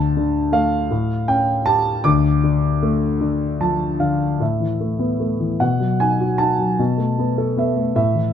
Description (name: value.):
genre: classical, lyrical solo piano.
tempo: 51 BPM (dotted quarters).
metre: 6/8.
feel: rubato.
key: D minor.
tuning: A4 = 442 Hz.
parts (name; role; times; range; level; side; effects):
dark grand piano; solo; 0.0-8.3 s; D2 to D6; -17 LUFS; left 1 dB; none.
room: light reverb.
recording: close, detailed microphones.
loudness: -17 LUFS.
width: side -8 dB against mid.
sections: 0.0-4.4 A section; 4.4-8.3 B section.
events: grand piano fill 3.2-4.4.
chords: 0.0 D5; 0.9 A7; 2.1 Dm; 4.4 Asus2; 5.6 B; 6.8 B7sus4.